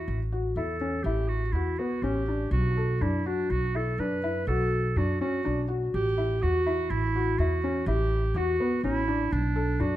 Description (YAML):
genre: contemporary instrumental, chamber music in an uneven meter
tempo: 123 BPM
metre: 7/4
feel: straight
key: unclear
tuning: A4 = 437 Hz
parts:
  - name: bright clarinet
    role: second line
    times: 0.0-10.0 s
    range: D4 to B4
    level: -30 LUFS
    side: right 4 dB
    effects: none
  - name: felt-muted upright piano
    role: arpeggios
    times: 0.0-10.0 s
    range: B3 to A4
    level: -31 LUFS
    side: left 4 dB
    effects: none
  - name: upright bass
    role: bass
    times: 0.0-10.0 s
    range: A1 to F#2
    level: -28 LUFS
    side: equal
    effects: none
room: moderate recital hall reverb, RT60 1.7 s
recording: dark, warm production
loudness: -25 LUFS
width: side -14 dB against mid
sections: 0.0-10.0 A section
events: none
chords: 0.0 A13; 2.5 Bm7; 5.9 A7(no3); 9.3 Bm7